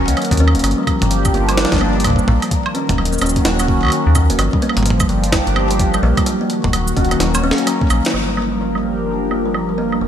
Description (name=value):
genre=IDM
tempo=128 BPM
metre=4/4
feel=swing 62% on 16ths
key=unclear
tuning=A4 = 439 Hz
part: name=phased analog pad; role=sustained chords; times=0.0-10.1 s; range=Eb3 to Bb4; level=-20 LUFS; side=left 1 dB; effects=phaser, chorus, vintage 12-bit sampler grit
part: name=kalimba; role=arpeggios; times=0.0-10.1 s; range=F3 to Db4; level=-20 LUFS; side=equal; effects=low-pass filter, ping-pong delay
part: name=metallic FM bass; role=bass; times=0.0-10.1 s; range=Eb1 to Eb2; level=-18 LUFS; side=equal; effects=none
part: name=jungle sampler-style drum kit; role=drums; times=0.1-10.0 s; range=hi-hat, shaker, snare drum, toms, woodblock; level=-20 LUFS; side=right 2 dB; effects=low-pass filter on perc, studio reverb, low-pass filter on hats, low-pass filter on snare, low-pass filter on toms, ping-pong delay
part: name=electronic kick drum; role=drums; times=0.3-7.9 s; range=none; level=-19 LUFS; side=equal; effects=studio reverb
room=moderate lush hall reverb, RT60 1.8 s, digital ambience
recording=bright 1980s-style digital production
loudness=-14 LUFS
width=side -9 dB against mid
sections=0.0-8.1 A section; 8.1-10.1 B section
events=drum fill 7.2-8.1; band accent 8.0; filter sweep on kalimba 8.1-10.1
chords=0.0 Ebm7; 0.6 Gm7; 2.5 Ebm7; 4.4 Gm7; 6.3 Ebm7; 8.1 Gm7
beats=0.17 | 0.64 1.11 1.57 2.04 | 2.51 2.98 3.45 3.92 | 4.39 4.86 5.33 5.79 | 6.26 6.73 7.20 7.67 | 8.14 8.61 9.07 9.54 | 10.01